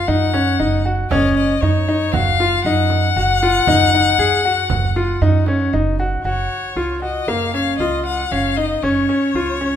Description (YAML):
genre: contemporary instrumental, chamber music in an uneven meter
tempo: 117 BPM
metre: 5/4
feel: straight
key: unclear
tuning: A4 = 439 Hz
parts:
  - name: rich violin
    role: melody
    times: 0.0-9.8 s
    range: C#5 to F#5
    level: -19 LUFS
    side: left 6 dB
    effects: none
  - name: bright grand piano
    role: arpeggios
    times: 0.0-9.8 s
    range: A#3 to G#4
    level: -19 LUFS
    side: left 1 dB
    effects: none
  - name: upright bass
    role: bass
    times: 0.1-9.8 s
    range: F#1 to F#2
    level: -20 LUFS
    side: right 3 dB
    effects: none
  - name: frame drum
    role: percussion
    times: 0.3-6.1 s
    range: none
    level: -26 LUFS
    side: right 6 dB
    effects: none
room: moderate recital hall reverb, RT60 1.5 s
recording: minimal, uncompressed stereo recording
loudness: -15 LUFS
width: side -9 dB against mid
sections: 0.0-6.2 A section; 6.2-9.8 B section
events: none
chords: 0.0 D#m7/F#; 6.2 F#maj7(no3)